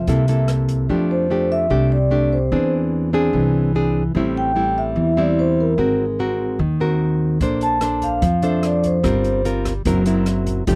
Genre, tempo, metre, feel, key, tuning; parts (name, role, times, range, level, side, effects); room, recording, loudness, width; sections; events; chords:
bossa nova; 147 BPM; 4/4; straight; F major; A4 = 439 Hz
vibraphone with soft mallets; melody; 0.0-9.4 s; Bb4 to A5; -24 LUFS; equal
nylon-string guitar; accompaniment; 0.0-10.8 s; A2 to C5; -21 LUFS; equal
upright bass; bass; 0.0-10.8 s; F1 to F2; -25 LUFS; equal
open jazz drum kit; drums; 0.1-0.8, 7.4-10.8 s; hi-hat, kick drum, rim click; -30 LUFS; equal
light reverb; dry, close 1970s-style studio recording; -19 LUFS; mono
0.9-10.8 A section
0.1 C6; 0.9 F69; 2.5 Eaug7; 4.2 Am7; 5.8 Ab9; 7.4 Bbmaj9; 9.0 Gm7; 9.9 Gb7#11